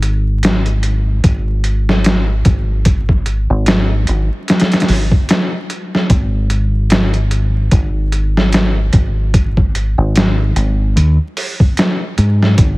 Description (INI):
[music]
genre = trip hop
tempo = 74 BPM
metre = 4/4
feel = swing 57% on 16ths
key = unclear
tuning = A4 = 435 Hz
[part]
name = deep dub fingered electric bass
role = bass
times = 0.0-12.8 s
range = G#1 to G#2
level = -14 LUFS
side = equal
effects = none
[part]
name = trip hop sampler-style drum kit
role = drums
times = 0.0-12.8 s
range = hi-hat, kick drum, snare drum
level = -14 LUFS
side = equal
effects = overdrive
[sound]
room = little or no reverb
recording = heavily compressed radio sound, vinyl crackle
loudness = -12 LUFS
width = side -21 dB against mid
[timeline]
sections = 0.0-12.8 A section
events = none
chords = none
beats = 0.43 1.24 2.05 | 2.86 3.67 4.48 5.29 | 6.10 6.91 7.72 8.54 | 9.35 10.16 10.97 11.78 | 12.59